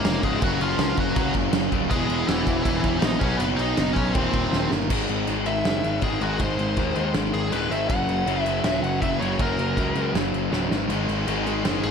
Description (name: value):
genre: punk rock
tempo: 160 BPM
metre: 4/4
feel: straight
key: unclear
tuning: A4 = 440 Hz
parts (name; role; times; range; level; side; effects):
- nasal lead guitar with a parked wah; melody; 0.0-11.9 s; E3 to Gb5; -28 LUFS; left 1 dB; overdrive, ping-pong delay
- crunchy overdriven guitar; riff; 0.0-11.9 s; Db2 to Cb4; -28 LUFS; left 13 dB; none
- distorted electric guitar; riff; 0.0-11.9 s; Db2 to Cb5; -29 LUFS; right 16 dB; distortion
- sludgy distorted guitar; riff; 0.0-4.9, 10.9-11.9 s; Db2 to Cb4; -30 LUFS; right 1 dB; overdrive
- loose indie drum kit; drums; 0.0-11.9 s; crash cymbal, kick drum, snare drum; -26 LUFS; right 1 dB; none
- fuzz picked electric bass; bass; 0.1-11.9 s; Db1 to Eb2; -29 LUFS; equal; overdrive
room: light reverb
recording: none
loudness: -21 LUFS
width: side -6 dB against mid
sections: 0.0-4.9 A section; 4.9-11.9 B section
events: drum fill 4.5-4.9, 10.5-10.9; half time 4.9-11.9; lead electric guitar solo 4.9-11.9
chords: 0.4 Gb; 1.9 E; 3.2 Cb; 4.2 Eb; 4.9 Ab; 7.9 Gb; 10.7 Ab5